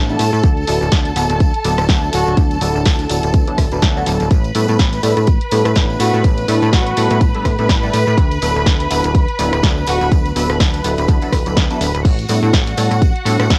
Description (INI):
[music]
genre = filtered disco house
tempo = 124 BPM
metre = 4/4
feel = swing 56% on 16ths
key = unclear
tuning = A4 = 438 Hz
[part]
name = funky polysynth comp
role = accompaniment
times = 0.0-13.6 s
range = F#3 to B4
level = -24 LUFS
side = equal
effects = chorus, phaser, sidechain pumping
[part]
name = rich studio string section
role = sustained chords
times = 0.0-13.6 s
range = F#4 to B5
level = -24 LUFS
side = equal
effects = sidechain pumping
[part]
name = plucky analog bass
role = bass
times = 0.0-13.6 s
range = D1 to A2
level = -21 LUFS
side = equal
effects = sidechain pumping
[part]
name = tambourine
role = percussion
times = 0.1-13.6 s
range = none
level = -36 LUFS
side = equal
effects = sidechain pumping on perc
[part]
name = punchy analog drum machine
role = drums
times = 0.2-13.6 s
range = crash cymbal, hi-hat, rim click, snare drum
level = -24 LUFS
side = equal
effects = sidechain pumping on hats, cassette tape, sidechain pumping on cymbals
[part]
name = electronic kick drum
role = drums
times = 0.4-13.6 s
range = none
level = -17 LUFS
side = equal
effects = cassette tape
[part]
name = mellow horn section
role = melody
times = 2.1-2.3, 6.0-10.1 s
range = F#4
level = -23 LUFS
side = equal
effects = sidechain pumping, cassette tape
[sound]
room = light reverb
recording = home recording on cassette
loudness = -15 LUFS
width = mono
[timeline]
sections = 0.0-13.6 A section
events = none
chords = 0.4 D69; 4.3 A7sus4; 8.2 D69; 12.1 A7sus4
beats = | 0.44 0.92 1.41 1.89 | 2.37 2.86 3.34 3.83 | 4.31 4.79 5.28 5.76 | 6.24 6.73 7.21 7.70 | 8.18 8.66 9.15 9.63 | 10.12 10.60 11.08 11.57 | 12.05 12.54 13.02 13.50